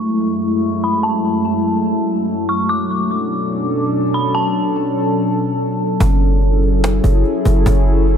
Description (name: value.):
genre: hip hop, atmospheric cloud-rap.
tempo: 145 BPM.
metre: 4/4.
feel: half-time.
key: F# minor.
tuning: A4 = 441 Hz.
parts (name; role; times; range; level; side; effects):
dark detuned synth bell; melody; 0.0-6.0 s; A5 to D6; -22 LUFS; equal; chorus, low-pass filter, analog delay.
warbly tape-like pad; sustained chords; 0.0-8.2 s; F#2 to A4; -17 LUFS; left 1 dB; chorus, built-in reverb, low-pass filter.
warm 808-style bass; bass; 6.0-8.2 s; F#1; -14 LUFS; equal; none.
cajon; drums; 6.0-8.1 s; none; -23 LUFS; equal; none.
room: light reverb.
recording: echo-heavy mix.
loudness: -14 LUFS.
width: side -8 dB against mid.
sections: 0.0-6.0 A section; 6.0-8.2 B section.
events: filter sweep 0.0-6.0.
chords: 0.0 F#m7; 2.7 Bm7; 6.0 F#m7.